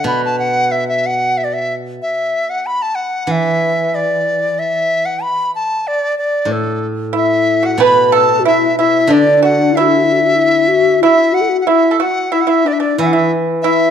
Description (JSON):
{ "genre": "chinese traditional, Chinese chamber ensemble", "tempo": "93 BPM", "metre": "2/4", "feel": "rubato", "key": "unclear", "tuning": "A4 = 440 Hz", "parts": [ { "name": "bright large dizi", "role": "melody", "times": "0.0-13.9 s", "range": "A4 to B5", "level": "-15 LUFS", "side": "left 1 dB", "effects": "none" }, { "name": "steel-string zither", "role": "accompaniment", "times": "0.0-13.9 s", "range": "A2 to E3", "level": "-18 LUFS", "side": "right 1 dB", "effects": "none" }, { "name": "mellow hollow low xiao", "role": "second line", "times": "7.1-13.9 s", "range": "D4 to B4", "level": "-16 LUFS", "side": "left 4 dB", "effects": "none" }, { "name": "pipa", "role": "second line", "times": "7.1-13.9 s", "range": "D4 to B4", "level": "-16 LUFS", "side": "right 7 dB", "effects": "none" } ], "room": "moderate recital hall reverb, RT60 1.3 s", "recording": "dark, warm production", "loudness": "-12 LUFS", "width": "side -8 dB against mid", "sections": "0.0-7.8 A section; 7.8-13.9 B section", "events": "none", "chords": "none", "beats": "| 0.07 0.70 | 1.34 1.99 | 2.64 3.30 | 3.94 4.58 | 5.22 5.85 | 6.48 7.14 | 7.80 8.45 | 9.09 9.73 | 10.36 11.01 | 11.66 12.32 | 12.99 13.65" }